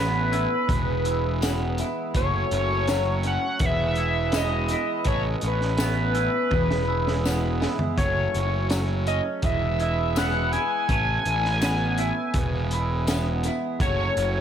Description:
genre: psychedelic rock.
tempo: 82 BPM.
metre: 4/4.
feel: straight.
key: unclear.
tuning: A4 = 440 Hz.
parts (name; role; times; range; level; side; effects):
overdriven synth lead; melody; 0.0-14.4 s; B4 to G#5; -27 LUFS; left 1 dB; phaser, tape echo.
hand-pumped harmonium; sustained chords; 0.0-14.4 s; E3 to C#5; -35 LUFS; right 5 dB; none.
twangy electric guitar; riff; 0.0-14.4 s; E3 to E4; -30 LUFS; right 1 dB; phaser, double-tracked left and right.
fuzz picked electric bass; bass; 0.0-14.4 s; E1 to A1; -26 LUFS; equal; overdrive.
crunchy breakbeat drum kit; drums; 0.3-14.3 s; hi-hat, kick drum, snare drum, toms; -28 LUFS; equal; tape echo.
tambourine; percussion; 1.4-13.2 s; none; -41 LUFS; left 13 dB; tape echo.
room: small room ambience.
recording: echo-heavy mix.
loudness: -22 LUFS.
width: side -9 dB against mid.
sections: 0.0-14.4 A section.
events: drum fill 6.5-8.0.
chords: 0.0 Aadd9; 0.7 E; 2.2 F#m; 3.6 E; 5.1 Aadd9; 6.5 E; 8.0 F#m; 9.4 E; 10.9 Aadd9; 12.4 E; 13.8 F#m.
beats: 0.70 1.43 | 2.15 2.88 3.61 4.34 | 5.07 5.79 6.52 7.25 | 7.98 8.71 9.44 10.17 | 10.89 11.62 12.35 13.08 | 13.81.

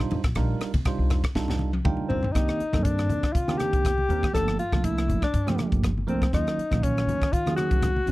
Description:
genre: electric jazz fusion.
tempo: 120 BPM.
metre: 4/4.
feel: swing 54% on 16ths.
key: C dorian.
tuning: A4 = 440 Hz.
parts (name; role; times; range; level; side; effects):
bell-like tine electric piano; accompaniment; 0.0-8.1 s; Eb3 to G5; -30 LUFS; right 4 dB; phaser.
upright bass; bass; 0.0-8.1 s; G1 to Eb3; -28 LUFS; equal; none.
crisp fusion drum kit; drums; 0.1-8.1 s; hi-hat, kick drum, ride cymbal, rim click, snare drum, toms; -27 LUFS; equal; none.
congas; percussion; 0.1-8.1 s; none; -33 LUFS; left 2 dB; none.
warm alto saxophone; melody; 2.1-8.1 s; C4 to A4; -27 LUFS; left 2 dB; none.
room: small room ambience.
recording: dry, close 1970s-style studio recording.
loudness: -22 LUFS.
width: side -18 dB against mid.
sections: 0.0-2.3 A section; 2.3-8.1 B section.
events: drum fill 1.3-2.3; tine electric piano fill 1.6-2.3.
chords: 0.0 Cm11; 2.3 Cm9; 4.3 Gm9; 6.3 Ebm9.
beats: | 0.35 0.85 1.35 1.84 | 2.34 2.84 3.34 3.84 | 4.34 4.84 5.33 5.83 | 6.33 6.83 7.33 7.83.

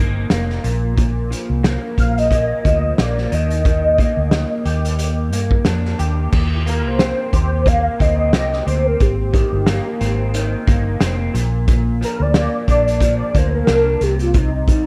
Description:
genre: indie pop, bedroom pop.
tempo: 90 BPM.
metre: 4/4.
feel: swing 55% on 16ths.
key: Eb major.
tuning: A4 = 441 Hz.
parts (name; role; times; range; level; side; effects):
electric guitar through a small old amp; accompaniment; 0.0-14.9 s; Bb2 to G4; -27 LUFS; equal; analog chorus, vibrato effect.
vintage muted fingered electric bass; bass; 0.0-14.7 s; F1 to G2; -22 LUFS; equal; none.
loose indie drum kit; drums; 0.3-14.9 s; crash cymbal, hi-hat, kick drum, snare drum; -21 LUFS; equal; none.
warm velvety synth lead; melody; 2.0-14.9 s; Eb4 to F5; -22 LUFS; equal; phaser, ensemble chorus, slapback echo.
room: little or no reverb.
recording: none.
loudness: -17 LUFS.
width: mono.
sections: 0.0-6.3 A section; 6.3-14.9 B section.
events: soft synth lead solo 6.3-14.9.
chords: 0.0 Abadd9 (rootless); 0.6 Bb5; 3.3 Ebmaj7; 6.3 Eb6; 9.0 Abadd9; 11.3 Bb; 14.0 Cm7.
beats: 0.30 | 0.97 1.64 2.31 2.98 | 3.65 4.32 4.99 5.66 | 6.33 7.00 7.67 8.34 | 9.01 9.68 10.34 11.01 | 11.68 12.35 13.01 13.68 | 14.35.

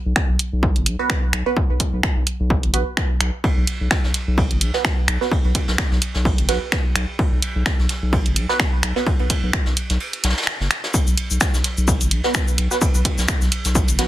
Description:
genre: minimal techno.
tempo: 128 BPM.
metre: 4/4.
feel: swing 56% on 16ths.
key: unclear.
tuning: A4 = 440 Hz.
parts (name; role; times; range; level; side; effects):
saturated sub bass; bass; 0.1-14.1 s; F#1 to B1; -21 LUFS; equal; sidechain pumping.
electronic kick drum; drums; 0.2-13.9 s; none; -20 LUFS; equal; none.
punchy analog drum machine; drums; 0.2-14.1 s; finger snaps, hi-hat, shaker; -22 LUFS; equal; soft clipping on snare.
filtered dub chord stab; stabs; 1.0-9.0, 12.2-14.1 s; B3 to B4; -25 LUFS; right 5 dB; phaser, tape echo.
vintage brush drum kit; drums; 3.4-14.1 s; ride cymbal, snare drum; -29 LUFS; right 1 dB; high-pass filter on cymbals, high-pass filter on snare, high-pass filter on room.
room: little or no reverb.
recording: dense, heavily limited modern master.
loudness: -17 LUFS.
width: side -14 dB against mid.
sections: 0.0-10.9 A section; 10.9-14.1 B section.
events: break 10.0-10.9; drop 10.9-14.1.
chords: 0.0 B5.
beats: 0.16 0.63 1.10 | 1.56 2.03 2.50 2.97 | 3.44 3.91 4.38 4.85 | 5.32 5.78 6.25 6.72 | 7.19 7.66 8.13 8.60 | 9.06 9.53 10.00 10.47 | 10.94 11.41 11.88 12.35 | 12.81 13.28 13.75.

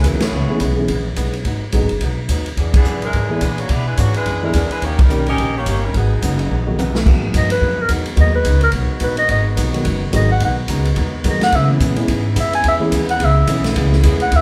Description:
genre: jazz, big band swing.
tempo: 215 BPM.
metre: 4/4.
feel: swing 59% on 8ths.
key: G# minor.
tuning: A4 = 438 Hz.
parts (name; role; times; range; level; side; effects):
warm saxophone section; melody; 0.0-6.8 s; E3 to D#5; -25 LUFS; equal; none.
dark baby grand piano; accompaniment; 0.0-13.6 s; D#3 to G#4; -25 LUFS; equal; none.
upright bass; bass; 0.0-14.4 s; F#1 to C#3; -20 LUFS; equal; none.
swinging big-band drum kit; drums; 0.0-14.4 s; crash cymbal, hi-hat, kick drum, ride cymbal, snare drum, toms; -23 LUFS; equal; none.
archtop guitar, miked and amplified; accompaniment; 0.1-14.4 s; G#2 to G#4; -30 LUFS; equal; none.
clear trombone section; sustained chords; 7.0-14.4 s; C#3 to F#4; -30 LUFS; equal; none.
mellow clarinet; melody; 7.4-14.4 s; A#4 to G#5; -20 LUFS; equal; none.
room: moderate large studio reverb, RT60 0.9 s.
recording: band playing live in one room.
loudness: -17 LUFS.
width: mono.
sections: 0.0-7.1 A section; 7.1-14.4 B section.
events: band accent 0.2, 2.7, 4.9; drum fill 6.5-7.1; clarinet solo 7.1-14.4.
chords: 0.0 C#m7; 1.4 G#m7; 2.6 E7; 4.8 D#7; 5.9 G#m7; 11.5 C#m7.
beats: 0.04 | 0.32 0.60 0.88 1.16 | 1.44 1.72 2.00 2.28 | 2.56 2.84 3.12 3.40 | 3.69 3.97 4.25 4.53 | 4.81 5.09 5.37 5.65 | 5.93 6.21 6.49 6.77 | 7.05 7.33 7.61 7.89 | 8.17 8.45 8.73 9.01 | 9.29 9.56 9.84 10.12 | 10.40 10.68 10.96 11.24 | 11.52 11.80 12.07 12.36 | 12.63 12.91 13.19 13.47 | 13.75 14.03 14.31.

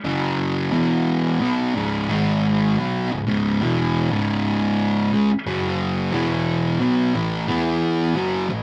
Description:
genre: metal.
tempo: 89 BPM.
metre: 4/4.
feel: straight.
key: C# minor.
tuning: A4 = 443 Hz.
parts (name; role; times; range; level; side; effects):
fuzz guitar; solo; 0.0-8.6 s; C#2 to E4; -21 LUFS; equal; distortion.
room: moderate small room reverb, RT60 0.6 s.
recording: rough rehearsal-room recording.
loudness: -21 LUFS.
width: mono.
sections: 0.0-8.6 A section.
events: none.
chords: 0.1 F#5; 0.7 E5; 1.4 C#5; 2.1 G#5; 2.8 C#m; 5.5 F#5; 6.1 E5; 6.8 B5; 7.2 A5; 7.5 E5.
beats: 0.40 1.07 | 1.75 2.42 3.10 3.77 | 4.45 5.13 5.80 6.48 | 7.16 7.83 8.51.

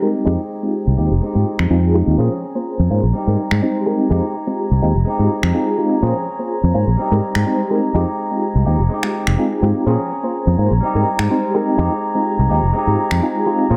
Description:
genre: filtered disco house.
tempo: 125 BPM.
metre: 4/4.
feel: straight.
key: F minor.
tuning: A4 = 440 Hz.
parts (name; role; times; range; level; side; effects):
reed electric piano; accompaniment; 0.0-13.8 s; Ab3 to C5; -22 LUFS; equal; medium tremolo, phaser, low-pass filter.
rich chamber string section; sustained chords; 0.0-13.8 s; Bb5 to Ab6; -29 LUFS; equal; vintage 12-bit sampler grit, low-pass filter.
clean electric guitar; riff; 0.0-13.8 s; F3 to Ab4; -27 LUFS; equal; low-pass filter.
fingered electric bass; bass; 0.3-13.8 s; F1 to Bb2; -18 LUFS; equal; low-pass filter.
electronic finger snaps; drums; 1.6-13.2 s; none; -27 LUFS; equal; low-pass filter on snare, studio reverb.
room: light reverb.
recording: none.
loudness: -18 LUFS.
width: mono.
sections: 0.0-13.8 A section.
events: filter sweep 0.0-13.8.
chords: 0.3 Fm9; 2.2 Bbm9; 3.1 Abmaj7; 4.1 Fm9; 6.0 Bbm9; 7.0 Abmaj7; 7.9 Fm9; 9.9 Bbm9; 10.8 Abmaj7; 11.8 Fm9.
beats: | 0.26 0.74 1.22 1.70 | 2.18 2.66 3.14 3.62 | 4.10 4.58 5.06 5.54 | 6.02 6.50 6.98 7.46 | 7.94 8.42 8.90 9.38 | 9.86 10.34 10.82 11.30 | 11.78 12.26 12.74 13.22 | 13.70.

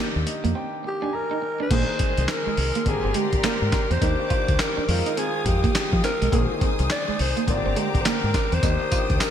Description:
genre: R&B, new jack swing.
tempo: 104 BPM.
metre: 4/4.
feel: swing 62% on 16ths.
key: unclear.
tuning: A4 = 439 Hz.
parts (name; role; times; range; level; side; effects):
warm concert grand piano; accompaniment; 0.0-9.3 s; D3 to Bb5; -30 LUFS; left 4 dB; none.
electric guitar at the edge of break-up; riff; 0.0-9.0 s; Ab3 to F4; -30 LUFS; right 7 dB; lush chorus.
deep dub fingered electric bass; bass; 0.2-9.2 s; G1 to F3; -24 LUFS; equal; none.
dusty soul sampler-style drum kit; drums; 0.3-9.3 s; crash cymbal, handclaps, hi-hat, kick drum, snare drum, tambourine; -25 LUFS; equal; gated reverb.
growling alto saxophone; melody; 0.9-9.3 s; G4 to D5; -26 LUFS; equal; none.
rich studio string section; sustained chords; 1.7-9.3 s; Ab3 to Eb6; -32 LUFS; left 2 dB; none.
room: moderate lush hall reverb, RT60 2.5 s.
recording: bright 1980s-style digital production.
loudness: -20 LUFS.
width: side -9 dB against mid.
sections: 0.0-1.7 A section; 1.7-9.3 B section.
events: grand piano fill 0.0-1.7; break 0.6-1.7.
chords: 0.0 Ebmaj7; 1.7 Bb9sus4; 2.9 Abmaj9#11; 4.0 Ebmaj7; 4.9 Fm7; 6.3 Bb9sus4; 7.5 Abmaj9#11; 8.6 Ebmaj7.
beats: 0.56 1.13 | 1.71 2.29 2.86 3.44 | 4.02 4.59 5.17 5.75 | 6.32 6.90 7.48 8.05 | 8.63 9.21.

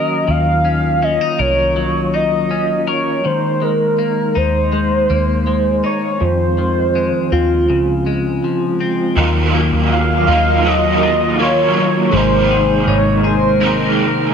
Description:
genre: dream pop.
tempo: 81 BPM.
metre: 4/4.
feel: straight.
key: Eb dorian.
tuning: A4 = 440 Hz.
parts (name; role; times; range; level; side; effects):
warm velvety synth lead; melody; 0.0-14.0 s; F4 to F5; -17 LUFS; right 1 dB; chorus, ping-pong delay.
mellow tonewheel organ; sustained chords; 0.0-14.3 s; C3 to Gb4; -21 LUFS; right 2 dB; chorus vibrato, stopped rotary speaker.
clean electric guitar; arpeggios; 0.0-14.3 s; F2 to Bb4; -20 LUFS; left 7 dB; analog chorus, ping-pong delay.
vintage muted picked electric bass; bass; 0.3-14.3 s; Ab1 to F2; -20 LUFS; right 1 dB; none.
overdriven semi-hollow guitar; accompaniment; 9.2-14.3 s; Eb3 to Bb4; -18 LUFS; right 3 dB; tremolo, ensemble chorus.
room: moderate plate reverb, RT60 3.1 s.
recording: none.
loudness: -13 LUFS.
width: side -7 dB against mid.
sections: 0.0-9.2 A section; 9.2-14.3 B section.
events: none.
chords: 0.0 Ebm7; 3.2 Absus2/Eb; 6.2 Fm7; 7.7 Dbmaj7; 9.2 Ebmadd9; 12.1 Abadd9.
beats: | 0.28 1.02 1.76 2.50 | 3.25 3.99 4.73 5.47 | 6.21 6.95 7.69 8.43 | 9.17 9.91 10.65 11.39 | 12.13 12.88 13.62.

